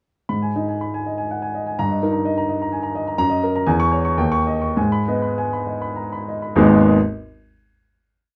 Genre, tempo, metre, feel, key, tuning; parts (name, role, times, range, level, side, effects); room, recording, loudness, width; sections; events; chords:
classical, romantic character piece for solo piano; 94-129 BPM; 3/4; rubato; G# minor; A4 = 443 Hz
warm grand piano; solo; 0.3-7.0 s; G#1 to C#6; -20 LUFS; equal
moderate studio reverb, RT60 0.5 s; dark, warm production; -20 LUFS; mono
0.3-6.6 A section; 6.6-8.2 final chord
slowing down 2.5-6.6
0.3 G#m; 1.8 D#/G; 3.2 D#m/F#; 3.7 C#m/E; 4.2 D#7; 4.8 G#m